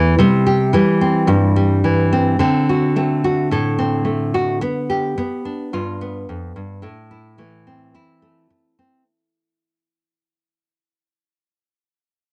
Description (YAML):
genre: highlife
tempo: 108 BPM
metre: 4/4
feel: straight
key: C major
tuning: A4 = 439 Hz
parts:
  - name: nylon-string guitar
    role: solo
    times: 0.0-11.3 s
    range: E2 to A4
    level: -18 LUFS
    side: equal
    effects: cassette tape
room: moderate studio reverb, RT60 0.6 s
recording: home recording on cassette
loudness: -17 LUFS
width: mono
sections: 0.2-9.1 A section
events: fade-out 0.2-9.1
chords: 0.2 C; 2.4 D7; 4.6 G; 6.8 Am